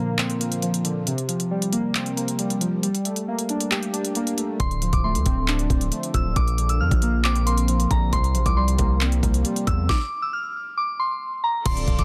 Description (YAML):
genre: hip hop, trap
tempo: 136 BPM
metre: 4/4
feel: half-time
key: unclear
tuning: A4 = 441 Hz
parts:
  - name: warbly lo-fi synth keys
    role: accompaniment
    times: 0.0-12.0 s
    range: Bb2 to G4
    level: -27 LUFS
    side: equal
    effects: chorus, low-pass filter
  - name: trap drum kit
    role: drums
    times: 0.2-12.0 s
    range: crash cymbal, handclaps, hi-hat, kick drum, snare drum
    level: -27 LUFS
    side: equal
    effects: none
  - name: soft synth bell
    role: melody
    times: 4.6-12.0 s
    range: Bb5 to F6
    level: -29 LUFS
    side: equal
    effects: chorus, low-pass filter, delay
  - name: hard-hitting 808-style bass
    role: bass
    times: 4.6-12.0 s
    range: D1 to F2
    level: -25 LUFS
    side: equal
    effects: none
  - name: dark chamber string section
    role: sustained chords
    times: 11.7-12.0 s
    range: C4 to D5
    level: -35 LUFS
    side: equal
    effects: none
room: little or no reverb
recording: dense, heavily limited modern master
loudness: -23 LUFS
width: mono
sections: 0.0-11.7 A section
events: break 0.0-4.6; stop 9.9-11.7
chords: 0.0 Bbadd9; 1.1 C7sus4; 2.8 Gmadd9; 4.6 Dm7; 6.4 Bbadd9; 8.1 C7sus4; 9.9 N.C.